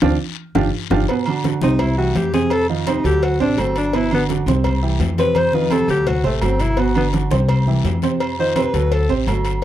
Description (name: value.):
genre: Afro-Cuban jazz.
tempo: 169 BPM.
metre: 4/4.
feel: straight.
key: unclear.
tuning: A4 = 438 Hz.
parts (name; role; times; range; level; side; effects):
warm upright piano; accompaniment; 0.0-9.6 s; B2 to C5; -21 LUFS; right 6 dB; none.
upright bass; bass; 0.0-9.6 s; G1 to F2; -21 LUFS; left 1 dB; transformer saturation.
bongos and cowbell; percussion; 0.0-9.6 s; none; -28 LUFS; left 10 dB; none.
congas; percussion; 0.0-9.4 s; none; -25 LUFS; left 3 dB; none.
guiro; percussion; 0.0-9.6 s; none; -35 LUFS; left 20 dB; none.
timbales and agogo bells; percussion; 0.0-9.6 s; none; -28 LUFS; right 4 dB; none.
clear alto saxophone; melody; 1.6-9.1 s; A3 to C5; -20 LUFS; left 2 dB; none.
room: light reverb.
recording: dry, close 1970s-style studio recording.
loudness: -16 LUFS.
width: side -12 dB against mid.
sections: 0.0-1.1 A section; 1.1-9.6 A section.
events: band accent 0.0-1.1; upright piano solo 0.0-1.1; drum fill 0.4-1.1, 5.4-6.8; alto saxophone solo 1.1-9.6.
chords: 0.4 G5; 1.1 D13b9; 1.8 C; 2.5 F7; 3.2 D7; 3.9 Gmaj7; 4.6 C; 5.4 F7; 6.1 D7; 6.8 Gmaj7; 7.5 C; 8.2 F7; 8.9 D7.